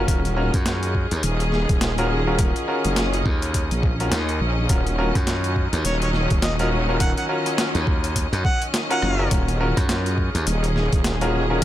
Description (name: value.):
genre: glitch hop.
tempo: 104 BPM.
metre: 4/4.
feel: swing 59% on 16ths.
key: Eb minor.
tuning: A4 = 440 Hz.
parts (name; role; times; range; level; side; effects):
bright symphonic string section; sustained chords; 0.0-11.6 s; Eb3 to Eb5; -27 LUFS; equal; sidechain pumping.
clear grand piano; stabs; 0.0-11.6 s; Db4 to Bb4; -27 LUFS; left 1 dB; sidechain pumping, tape echo.
wobble bass; bass; 0.0-11.6 s; Eb1 to Bb1; -22 LUFS; equal; chorus.
boom bap sampler-style drum kit; drums; 0.1-11.6 s; hi-hat, rim click, snare drum; -27 LUFS; equal; overdrive.
electronic kick drum; drums; 0.1-11.6 s; none; -22 LUFS; equal; overdrive.
glassy slap bass; bass; 0.5-10.4 s; Eb2 to Gb2; -24 LUFS; equal; tube saturation.
warm harmonica; melody; 5.9-9.3 s; Db5 to Gb5; -28 LUFS; right 1 dB; vintage 12-bit sampler grit, tape echo.
room: little or no reverb.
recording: none.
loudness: -19 LUFS.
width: side -13 dB against mid.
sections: 0.0-11.6 A section.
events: none.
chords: 0.0 Ebm9.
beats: | 0.08 0.66 1.24 1.81 | 2.39 2.97 3.55 4.12 | 4.70 5.28 5.85 6.43 | 7.01 7.58 8.16 8.74 | 9.31 9.89 10.47 11.05 | 11.62.